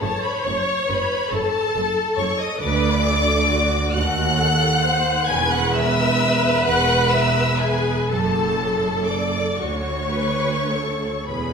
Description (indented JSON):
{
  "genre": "classical, slow romantic movement for string orchestra",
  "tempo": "34-48 BPM (dotted quarters)",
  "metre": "6/8",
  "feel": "rubato",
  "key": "unclear",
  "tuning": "A4 = 439 Hz",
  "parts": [
    { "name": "clear studio violin section", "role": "melody", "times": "0.0-11.5 s", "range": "G#5 to G#6", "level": "-24 LUFS", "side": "left 3 dB", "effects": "none" },
    { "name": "warm studio violin section", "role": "second line", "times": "0.0-11.5 s", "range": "G#4 to G#5", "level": "-24 LUFS", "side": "left 2 dB", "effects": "none" },
    { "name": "clear studio viola section", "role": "accompaniment", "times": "0.0-11.5 s", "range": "F#4 to C#5", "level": "-24 LUFS", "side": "right 1 dB", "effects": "none" },
    { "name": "bright studio double bass section", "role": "bass", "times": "0.0-11.5 s", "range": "E1 to D#2", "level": "-25 LUFS", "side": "right 3 dB", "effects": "none" },
    { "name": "rich studio cello section", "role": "bass", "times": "0.0-11.5 s", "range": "D2 to F#2", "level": "-26 LUFS", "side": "right 2 dB", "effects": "none" }
  ],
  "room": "wet recital hall reverb, RT60 1.5 s",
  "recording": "recorded in a church or concert hall",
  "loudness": "-18 LUFS",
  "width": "side -6 dB against mid",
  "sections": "0.0-11.5 A section",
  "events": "none",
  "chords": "0.0 F#m; 2.6 D6; 3.9 D#dim7; 5.3 E5; 8.1 F#m; 9.6 Dmaj7",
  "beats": "| 0.02 1.33 | 2.60 3.92 | 5.28 6.65 | 8.09 9.60 | 11.28"
}